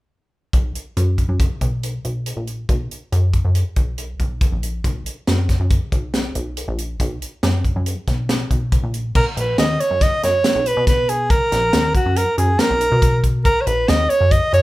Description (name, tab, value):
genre	progressive instrumental, band music in an uneven meter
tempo	139 BPM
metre	5/4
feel	straight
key	B major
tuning	A4 = 439 Hz
part	plucky analog bass	bass	0.5-14.6 s	A#1 to B2	-21 LUFS	equal	none
part	tight funk drum kit	drums	0.5-14.6 s	crash cymbal, hi-hat, kick drum, snare drum	-20 LUFS	equal	none
part	warm soprano saxophone	melody	9.2-14.6 s	F#4 to D#5	-17 LUFS	right 1 dB	none
room	light reverb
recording	band playing live in one room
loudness	-16 LUFS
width	side -18 dB against mid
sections	0.5-9.2 A section; 9.2-14.6 B section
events	none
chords	0.5 B5; 9.2 Bmaj7